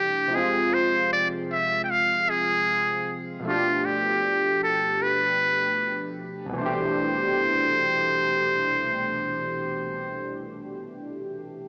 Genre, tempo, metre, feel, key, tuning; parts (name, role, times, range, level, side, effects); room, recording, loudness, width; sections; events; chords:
hip hop; 77 BPM; 4/4; swing 58% on 16ths; C major; A4 = 439 Hz
trumpet with metal mute; melody; 0.0-10.4 s; F4 to G5; -25 LUFS; equal; low-pass filter, cassette tape
warm analog keys; accompaniment; 0.0-11.7 s; C2 to G4; -31 LUFS; equal; chorus, phaser, cassette tape, low-pass filter
light reverb; home recording on cassette, small speaker sound; -24 LUFS; mono
0.0-6.5 A section; 6.5-9.7 B section
0.3 Fm; 3.4 G7; 6.5 Cmaj9